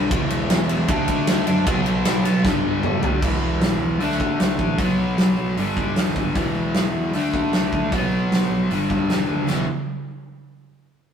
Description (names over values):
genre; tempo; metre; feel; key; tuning
hard rock; 153 BPM; 4/4; straight; E minor; A4 = 441 Hz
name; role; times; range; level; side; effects
distorted electric guitar; riff; 0.0-9.7 s; E2 to D4; -24 LUFS; left 3 dB; distortion
overdriven semi-hollow guitar; riff; 0.0-9.7 s; E2 to D4; -28 LUFS; right 4 dB; spring reverb
fuzz picked electric bass; bass; 0.0-9.7 s; E1 to D3; -25 LUFS; equal; overdrive
huge arena drum kit; drums; 0.1-9.6 s; crash cymbal, hi-hat, kick drum, ride cymbal, snare drum, toms; -22 LUFS; equal; none
room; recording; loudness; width
light reverb; rough rehearsal-room recording, warm saturation; -18 LUFS; side -7 dB against mid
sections
0.0-3.2 A section; 3.2-9.5 B section; 9.5-11.1 C section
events
drum fill 2.4-3.2, 9.3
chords
0.1 E5; 0.9 D; 1.7 B5; 2.4 G5; 3.2 E5; 4.0 D5; 4.8 B5; 5.6 G5; 6.4 E5; 7.1 D5; 7.9 B5; 8.7 G5; 9.5 E5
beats
| 0.11 0.50 0.89 1.27 | 1.66 2.05 2.44 2.83 | 3.22 3.61 4.00 4.39 | 4.79 5.18 5.57 5.96 | 6.35 6.74 7.13 7.53 | 7.92 8.31 8.70 9.09 | 9.49